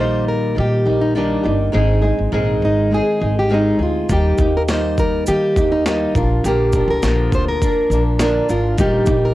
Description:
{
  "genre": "acoustic pop",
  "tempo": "102 BPM",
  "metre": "4/4",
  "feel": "straight",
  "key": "Eb major",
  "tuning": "A4 = 440 Hz",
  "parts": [
    { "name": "fingerpicked plugged-in steel-string acoustic guitar", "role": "melody", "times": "0.0-9.3 s", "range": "D4 to C5", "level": "-19 LUFS", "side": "equal", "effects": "none" },
    { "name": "nylon-string guitar", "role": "accompaniment", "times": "0.0-9.3 s", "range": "Ab2 to Bb4", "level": "-19 LUFS", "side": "equal", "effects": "none" },
    { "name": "upright bass", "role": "bass", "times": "0.0-9.3 s", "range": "G1 to Eb3", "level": "-20 LUFS", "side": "equal", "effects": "transformer saturation" },
    { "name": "breakbeat sampler-style drum kit", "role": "drums", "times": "4.1-9.2 s", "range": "kick drum, shaker, snare drum", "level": "-20 LUFS", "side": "equal", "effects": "cassette tape" }
  ],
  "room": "moderate booth ambience, RT60 0.2 s",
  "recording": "home recording on cassette",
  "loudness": "-14 LUFS",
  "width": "side -16 dB against mid",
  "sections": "0.0-9.3 A section",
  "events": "none",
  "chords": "0.0 Eb/Bb; 1.7 Ab; 4.1 Eb; 6.1 Bb; 8.8 Eb/Bb"
}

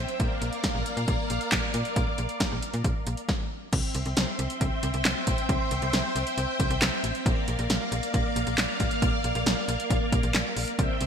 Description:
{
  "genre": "synth-pop",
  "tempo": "136 BPM",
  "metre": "4/4",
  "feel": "straight",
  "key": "unclear",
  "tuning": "A4 = 440 Hz",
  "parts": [
    { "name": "string machine, violins", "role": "sustained chords", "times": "0.0-11.1 s", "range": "Bb3 to G5", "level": "-30 LUFS", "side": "equal", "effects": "ensemble chorus" },
    { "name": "slap-like FM bass", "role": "bass", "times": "0.0-11.1 s", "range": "A1 to Bb2", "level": "-30 LUFS", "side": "equal", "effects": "none" },
    { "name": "punchy analog drum machine", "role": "drums", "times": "0.1-11.1 s", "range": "crash cymbal, handclaps, hi-hat, kick drum, snare drum", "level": "-27 LUFS", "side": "equal", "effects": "gated reverb" }
  ],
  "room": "moderate lush hall reverb, RT60 1.9 s, digital ambience",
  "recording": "bright 1980s-style digital production",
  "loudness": "-24 LUFS",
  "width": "side -7 dB against mid",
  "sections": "0.0-3.7 A section; 3.7-11.1 B section",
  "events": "none",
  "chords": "0.2 Bb; 3.7 C; 7.3 Bb"
}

